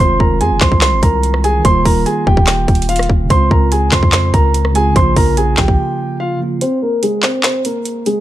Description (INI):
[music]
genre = hip hop, trap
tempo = 145 BPM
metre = 4/4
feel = half-time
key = unclear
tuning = A4 = 440 Hz
[part]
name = dark grand piano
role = melody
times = 0.0-8.2 s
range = Ab3 to C6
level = -16 LUFS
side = equal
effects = low-pass filter
[part]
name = mellow tine electric piano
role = accompaniment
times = 0.0-6.6 s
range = Db3 to F4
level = -20 LUFS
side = right 3 dB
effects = low-pass filter
[part]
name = long sustained 808-style bass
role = bass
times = 0.0-5.8 s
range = Eb1 to F2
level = -16 LUFS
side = equal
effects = none
[part]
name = trap drum kit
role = drums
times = 0.2-8.2 s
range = handclaps, hi-hat, kick drum, rim click, snare drum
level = -14 LUFS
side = equal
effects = none
[sound]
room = little or no reverb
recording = none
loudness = -11 LUFS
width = side -13 dB against mid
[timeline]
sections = 0.0-6.6 A section; 6.6-8.2 B section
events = break 5.8-6.6; kick muted 6.6-8.2; filter sweep 6.6-8.2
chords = 0.0 Fm7; 1.6 Ebadd9; 3.3 Dbmaj7; 5.0 Bbm; 6.6 Abadd9